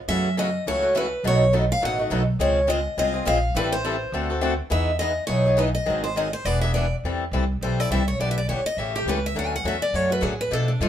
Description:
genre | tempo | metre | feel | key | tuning
acoustic string swing (jazz manouche) | 207 BPM | 4/4 | swing 58% on 8ths | unclear | A4 = 440 Hz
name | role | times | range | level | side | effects
picked steel-string acoustic guitar | melody | 0.1-10.9 s | D4 to G#5 | -25 LUFS | equal | none
picked swing-style acoustic guitar | accompaniment | 0.1-10.9 s | B2 to A4 | -27 LUFS | left 4 dB | none
picked swing-style acoustic guitar | accompaniment | 0.1-6.9 s | B2 to B4 | -30 LUFS | right 5 dB | none
upright bass | bass | 0.1-10.9 s | E1 to B2 | -25 LUFS | right 1 dB | none
room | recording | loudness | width
moderate studio reverb, RT60 0.6 s | minimal, uncompressed stereo recording | -21 LUFS | side -10 dB against mid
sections
0.0-7.0 A section; 7.0-10.9 B section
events
steel-string acoustic guitar solo 7.0-10.9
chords
0.1 F#m7; 1.2 B9; 2.4 C#maj7; 3.6 Am7; 4.1 D7; 4.7 Emaj7; 5.9 G#7; 6.5 E7; 7.0 Am7; 8.2 Em7; 8.8 A7; 9.4 Dmaj7

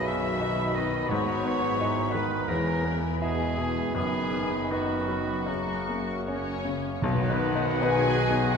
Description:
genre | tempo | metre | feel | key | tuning
classical, romantic movement for piano and orchestra | 74-88 BPM | 4/4 | rubato | B major | A4 = 440 Hz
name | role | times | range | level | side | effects
clear grand piano | melody | 0.0-8.6 s | B1 to E5 | -30 LUFS | left 3 dB | none
muted symphonic violin section | melody | 0.0-8.6 s | B4 to C#6 | -38 LUFS | left 1 dB | none
clear oboe | second line | 0.0-8.6 s | F#4 to E5 | -34 LUFS | right 1 dB | none
mellow clarinet | second line | 0.0-8.6 s | D#4 to F#4 | -39 LUFS | equal | none
mellow hollow concert flute | second line | 0.0-8.6 s | B4 to B5 | -38 LUFS | left 2 dB | none
muted symphonic violin section | second line | 0.0-8.6 s | B3 to E5 | -36 LUFS | left 2 dB | none
muted symphonic viola section | accompaniment | 0.0-8.6 s | D#3 to F#4 | -38 LUFS | right 2 dB | none
warm bassoon | accompaniment | 0.0-8.6 s | B2 to F#3 | -36 LUFS | right 2 dB | none
dark French horn section | sustained chords | 0.0-8.6 s | C#3 to B4 | -36 LUFS | left 2 dB | none
muted studio double bass section | bass | 0.0-8.6 s | E1 to B1 | -37 LUFS | right 3 dB | none
muted symphonic cello section | bass | 0.0-8.6 s | E2 to B2 | -36 LUFS | right 1 dB | none
timpani | percussion | 3.9-8.1 s | F#2 to B2 | -34 LUFS | equal | none
clear trombone section | sustained chords | 7.0-8.6 s | D#3 to F#3 | -34 LUFS | right 3 dB | none
clear trumpet section | stabs | 7.0-8.6 s | F#5 | -34 LUFS | right 2 dB | none
mellow tuba | bass | 7.0-8.6 s | B1 | -34 LUFS | right 4 dB | none
room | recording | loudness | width
wet concert hall reverb, RT60 2.4 s | minimal, uncompressed stereo recording | -25 LUFS | side -6 dB against mid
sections
0.0-7.0 A section; 7.0-8.6 B section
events
none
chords
0.0 B; 1.1 G#m7; 2.5 E; 4.0 B/F#; 5.5 F#; 7.0 B

